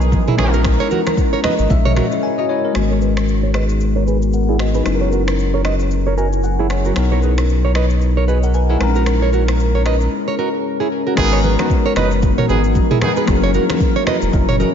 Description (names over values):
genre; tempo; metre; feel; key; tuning
afrobeats; 114 BPM; 4/4; swing 58% on 16ths; G# minor; A4 = 440 Hz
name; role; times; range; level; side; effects
bell-like tine electric piano; accompaniment; 0.0-14.7 s; F#3 to G#5; -21 LUFS; left 5 dB; lush chorus, low-pass filter
deep dark ambient pad; sustained chords; 0.0-14.7 s; F#3 to A#4; -22 LUFS; left 2 dB; chorus, built-in reverb, low-pass filter
warm sub bass; bass; 0.0-14.6 s; E1 to B1; -17 LUFS; equal; none
afro-pop drum kit; drums; 0.0-14.7 s; crash cymbal, finger snaps, kick drum, rim click, shaker, toms; -21 LUFS; equal; none
congas; percussion; 0.1-2.1, 11.4-14.7 s; none; -26 LUFS; right 3 dB; none
nylon-string guitar; riff; 0.3-14.7 s; E4 to D#5; -22 LUFS; right 7 dB; low-pass filter, ping-pong delay
warm horn section; second line; 0.4-0.5, 11.2-13.1 s; D#3 to B4; -23 LUFS; right 2 dB; none
room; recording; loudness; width
light reverb, digital ambience; nothing above 7.5 kHz; -14 LUFS; side -8 dB against mid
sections
0.0-2.8 A section; 2.8-11.2 B section; 11.2-14.7 A section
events
tine electric piano fill 1.2-2.8, 5.9-7.0; break 2.2-2.8, 10.1-11.2; filter sweep 2.8-11.2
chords
0.4 G#m9; 4.9 F#7; 7.0 Bmaj7; 8.8 A#m7b5; 11.2 G#m9; 13.3 F#7